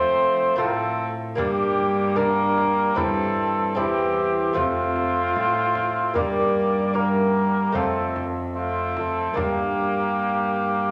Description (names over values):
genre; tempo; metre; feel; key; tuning
classical, renaissance-style consort dance; 75 BPM; 4/4; straight; G dorian; A4 = 444 Hz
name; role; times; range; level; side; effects
mellow cornet; melody; 0.0-10.9 s; F4 to D5; -26 LUFS; equal; none
warm cor anglais; second line; 0.0-10.9 s; Bb3 to C4; -30 LUFS; equal; none
lute; accompaniment; 0.0-10.9 s; E2 to Bb4; -30 LUFS; equal; none
warm bassoon; accompaniment; 0.0-10.9 s; E3 to Bb3; -32 LUFS; equal; none
dark cello; bass; 0.0-10.9 s; E2 to F3; -31 LUFS; equal; none
frame drum; percussion; 1.4-9.8 s; none; -39 LUFS; equal; none
room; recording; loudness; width
wet recital hall reverb, RT60 1.5 s; none; -23 LUFS; mono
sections
0.0-10.9 A section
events
none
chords
0.0 F; 1.4 Gm; 3.0 C/G; 4.6 F; 6.2 Gm; 7.8 F; 9.4 Gm